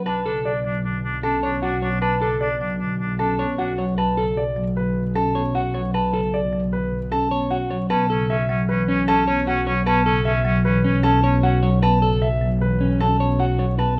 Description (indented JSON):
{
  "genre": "classical, minimalist pattern music",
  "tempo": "153 BPM",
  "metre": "5/4",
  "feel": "straight",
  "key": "B minor",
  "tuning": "A4 = 439 Hz",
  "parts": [
    { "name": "marimba with soft mallets", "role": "accompaniment", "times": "0.0-14.0 s", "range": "C#3 to C#4", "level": "-27 LUFS", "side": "equal", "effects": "none" },
    { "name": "electric guitar at the edge of break-up", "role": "arpeggios", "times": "0.0-14.0 s", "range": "C#4 to C#5", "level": "-28 LUFS", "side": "equal", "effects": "none" },
    { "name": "clear grand piano", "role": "melody", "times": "0.1-14.0 s", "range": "B4 to A5", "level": "-27 LUFS", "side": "equal", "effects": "none" },
    { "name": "clear oboe", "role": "second line", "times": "0.1-3.7, 7.9-11.6 s", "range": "C#4 to D4", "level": "-29 LUFS", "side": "equal", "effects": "none" },
    { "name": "warm chamber double bass section", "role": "bass", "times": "0.1-14.0 s", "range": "B1", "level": "-26 LUFS", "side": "equal", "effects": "none" }
  ],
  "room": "moderate large studio reverb, RT60 1.1 s",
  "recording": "none",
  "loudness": "-21 LUFS",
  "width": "mono",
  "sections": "0.1-14.0 A section",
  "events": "none",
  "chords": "0.1 Bm7; 7.9 Aadd9/B"
}